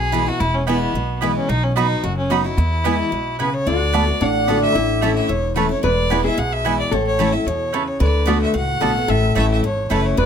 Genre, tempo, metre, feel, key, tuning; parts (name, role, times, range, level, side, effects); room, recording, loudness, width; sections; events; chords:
bluegrass; 221 BPM; 4/4; straight; E mixolydian; A4 = 436 Hz
clear fiddle; melody; 0.0-10.3 s; B3 to F#5; -23 LUFS; equal
picked steel-string acoustic guitar; accompaniment; 0.0-10.3 s; E2 to F#4; -22 LUFS; left 3 dB
upright bass; bass; 0.0-10.3 s; E1 to E2; -22 LUFS; equal
mandolin; stabs; 0.1-10.0 s; A3 to B5; -22 LUFS; right 8 dB
lap resonator guitar; second line; 3.7-10.3 s; D4 to B4; -23 LUFS; left 2 dB
light reverb; close, detailed microphones; -16 LUFS; side -8 dB against mid
0.0-3.7 A section; 3.7-10.3 B section
0.0 E; 1.5 B; 2.6 E; 3.7 D6; 4.8 A; 5.8 E; 6.9 A; 8.0 D6; 9.1 A